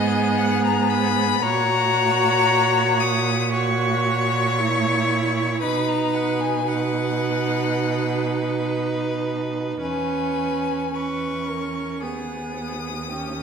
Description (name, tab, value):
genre	classical, slow romantic movement for string quartet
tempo	57 BPM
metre	4/4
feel	rubato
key	G# minor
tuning	A4 = 441 Hz
part	clear violin	melody	0.0-13.4 s	D#5 to D#6	-25 LUFS	left 7 dB	none
part	rich violin	second line	0.0-13.4 s	G4 to C#5	-26 LUFS	left 2 dB	none
part	clear viola	accompaniment	0.0-13.4 s	B3 to F#4	-25 LUFS	right 4 dB	none
part	warm cello	bass	0.0-13.4 s	D#2 to B2	-26 LUFS	right 4 dB	none
room	wet recital hall reverb, RT60 1.4 s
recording	none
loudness	-19 LUFS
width	side -6 dB against mid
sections	0.0-13.4 A section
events	none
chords	0.0 G#m; 1.4 F#/A#; 5.6 B; 9.8 E6; 12.0 G#m/D#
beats	0.38 | 1.42 2.48 3.53 4.58 | 5.62 6.67 7.72 8.76 | 9.82 10.94 12.02 13.12